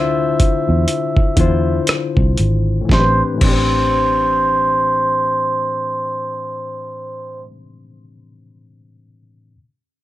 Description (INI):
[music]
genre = R&B, neo-soul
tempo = 58-63 BPM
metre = 4/4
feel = swing 57% on 16ths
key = A minor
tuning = A4 = 440 Hz
[part]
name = trumpet with cup mute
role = melody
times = 0.0-7.5 s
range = C5 to E5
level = -18 LUFS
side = right 2 dB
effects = low-pass filter, plate reverb
[part]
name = barky reed electric piano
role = accompaniment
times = 0.0-9.6 s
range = A2 to C5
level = -21 LUFS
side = left 6 dB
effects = overdrive, low-pass filter
[part]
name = vintage muted fingered electric bass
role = bass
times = 0.0-7.4 s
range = G#1 to E2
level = -18 LUFS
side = right 1 dB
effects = none
[part]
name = dusty soul sampler-style drum kit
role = drums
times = 0.4-3.7 s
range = crash cymbal, hi-hat, kick drum, rim click, snare drum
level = -16 LUFS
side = equal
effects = none
[sound]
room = light reverb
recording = none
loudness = -14 LUFS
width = side -14 dB against mid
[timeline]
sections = 0.0-2.9 A section; 2.9-7.0 B section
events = slowing down 0.0-2.9; filter sweep 0.0-2.9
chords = 0.0 Dm9; 2.9 Am11